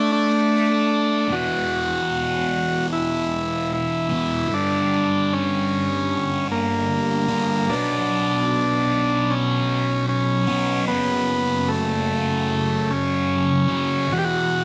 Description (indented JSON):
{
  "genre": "rock",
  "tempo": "75 BPM",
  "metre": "4/4",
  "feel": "straight",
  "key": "E dorian",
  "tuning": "A4 = 439 Hz",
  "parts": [
    { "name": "combo organ", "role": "melody", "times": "0.0-14.6 s", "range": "A3 to G4", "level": "-24 LUFS", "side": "equal", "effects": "slapback echo" },
    { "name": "thick fuzz guitar", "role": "riff", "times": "0.0-14.6 s", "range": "E2 to B3", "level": "-25 LUFS", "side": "equal", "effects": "distortion, phaser" }
  ],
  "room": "light reverb, digital ambience",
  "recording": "none",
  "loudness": "-22 LUFS",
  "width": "mono",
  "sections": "0.0-1.3 A section; 1.3-14.6 B section",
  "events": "none",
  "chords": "0.0 D5; 1.3 Esus2; 4.5 Gm; 7.7 Bm; 10.9 F#m; 14.1 Esus2",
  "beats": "0.51 | 1.30 2.10 2.90 3.70 | 4.50 5.30 6.10 6.90 | 7.70 8.50 9.30 10.10 | 10.90 11.70 12.50 13.30 | 14.10"
}